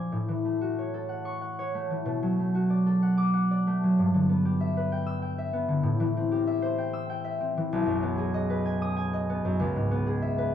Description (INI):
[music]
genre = classical, solo harp piece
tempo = 95 BPM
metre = 3/4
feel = rubato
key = unclear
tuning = A4 = 440 Hz
[part]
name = concert harp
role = solo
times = 0.0-10.5 s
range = B1 to E6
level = -25 LUFS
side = left 1 dB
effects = none
[sound]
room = wet stone room reverb, RT60 1.3 s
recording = close, detailed microphones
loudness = -25 LUFS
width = side -9 dB against mid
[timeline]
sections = 0.1-10.5 A section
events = none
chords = 0.1 A6; 2.1 Bm7; 4.0 G6; 5.9 Am7; 7.7 B6; 9.6 C#m7